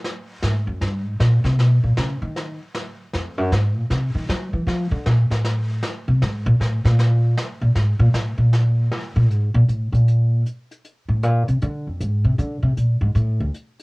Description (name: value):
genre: jazz piano trio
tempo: 156 BPM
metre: 4/4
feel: swing 65% on 8ths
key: unclear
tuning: A4 = 440 Hz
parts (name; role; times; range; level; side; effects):
- jazz brush drum kit; drums; 0.0-13.8 s; brushed snare drum, hi-hat, snare drum; -30 LUFS; equal; cassette tape
- upright bass; bass; 0.4-13.5 s; D2 to Gb3; -17 LUFS; equal; none
room: little or no reverb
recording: home recording on cassette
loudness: -18 LUFS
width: side -26 dB against mid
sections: 0.0-9.3 A section; 9.3-13.8 A section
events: upright bass solo 0.0-13.8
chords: none